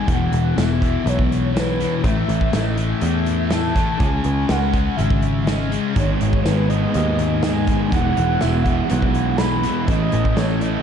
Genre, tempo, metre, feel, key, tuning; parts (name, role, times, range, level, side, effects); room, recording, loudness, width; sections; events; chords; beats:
rock, shoegaze and dream pop; 122 BPM; 4/4; straight; E major; A4 = 440 Hz
mellow horn-like synth lead; melody; 0.0-10.8 s; B4 to B5; -26 LUFS; equal; chorus, phaser, diffuse ambient delay
distorted electric guitar; riff; 0.0-10.8 s; E2 to C#4; -26 LUFS; equal; distortion
thick fuzz guitar; riff; 0.0-10.8 s; E2 to C#4; -24 LUFS; left 8 dB; distortion, lush chorus
picked electric bass; bass; 0.1-10.8 s; E1 to E2; -21 LUFS; equal
loose indie drum kit; drums; 0.1-10.7 s; hi-hat, kick drum, snare drum; -23 LUFS; right 1 dB
tambourine; percussion; 0.6-10.5 s; -43 LUFS; right 12 dB
overdriven semi-hollow guitar; riff; 6.0-10.8 s; G#2 to E4; -24 LUFS; right 10 dB; reverse reverb
moderate plate reverb, RT60 1.4 s, small room reverb; dreamy mix soaked in reverb, nothing above 10.8 kHz; -17 LUFS; side -8 dB against mid
0.0-10.8 A section
0.1 Esus2; 2.0 A5; 4.0 C#m; 6.0 G#m; 7.9 Eadd9; 9.9 A
| 0.09 0.57 1.06 1.55 | 2.04 2.54 3.02 3.52 | 4.00 4.50 4.99 5.48 | 5.97 6.46 6.95 7.44 | 7.93 8.42 8.91 9.40 | 9.89 10.38